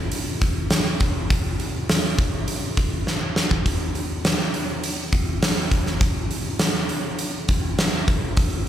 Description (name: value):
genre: rock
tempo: 102 BPM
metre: 4/4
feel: straight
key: none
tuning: none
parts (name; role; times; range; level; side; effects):
- huge arena drum kit; drums; 0.1-8.5 s; hi-hat, kick drum, snare drum; -20 LUFS; equal; none
room: moderate digital room reverb, RT60 1.1 s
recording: live gig heard through the venue's PA, club reverb, faint mains hum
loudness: -20 LUFS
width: side -11 dB against mid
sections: 0.0-8.7 A section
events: drum fill 3.1-3.7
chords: none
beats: 0.13 0.72 | 1.30 1.89 2.48 3.07 | 3.66 4.25 4.84 5.42 | 6.01 6.60 7.19 7.78 | 8.37